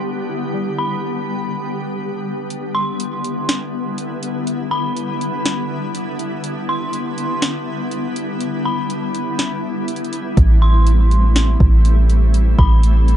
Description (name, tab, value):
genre	hip hop, atmospheric cloud-rap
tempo	122 BPM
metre	4/4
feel	half-time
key	E minor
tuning	A4 = 440 Hz
part	shimmering ambient pad	sustained chords	0.0-13.2 s	D3 to G4	-22 LUFS	left 1 dB	chorus, built-in reverb, sidechain pumping, low-pass filter
part	warbly lo-fi synth keys	arpeggios	0.0-2.0 s	G3 to G5	-30 LUFS	left 3 dB	chorus, low-pass filter, digital delay
part	dark detuned synth bell	melody	0.8-13.2 s	B5 to C6	-26 LUFS	equal	chorus, low-pass filter, digital delay
part	smooth R&B drum kit	drums	2.5-13.2 s	hi-hat, kick drum, snare drum	-18 LUFS	equal	overdrive
part	soft 808-style bass	bass	10.4-13.2 s	A1	-12 LUFS	equal	none
room	little or no reverb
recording	dark, warm production, nothing above 10.6 kHz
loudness	-16 LUFS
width	side -11 dB against mid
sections	0.0-2.5 A section; 2.5-13.2 B section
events	kick muted 2.5-10.4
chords	0.0 Em7; 10.4 Am7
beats	0.04 | 0.54 1.03 1.52 2.01 | 2.50 3.00 3.49 3.98 | 4.47 4.96 5.46 5.95 | 6.44 6.93 7.42 7.91 | 8.41 8.90 9.39 9.88 | 10.37 10.87 11.36 11.85 | 12.34 12.83